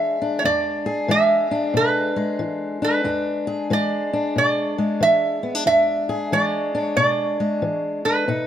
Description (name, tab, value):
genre	acoustic country blues, solo or duo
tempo	92 BPM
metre	4/4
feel	swing 65% on 8ths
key	E mixolydian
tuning	A4 = 444 Hz
part	metal-body resonator slide guitar	melody	0.0-8.5 s	B4 to E5	-20 LUFS	right 2 dB	none
part	fingerpicked steel-string acoustic guitar	accompaniment	0.0-8.5 s	E2 to G#4	-23 LUFS	left 3 dB	none
room	light reverb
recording	none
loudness	-18 LUFS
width	side -10 dB against mid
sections	0.0-8.5 A section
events	none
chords	0.0 E7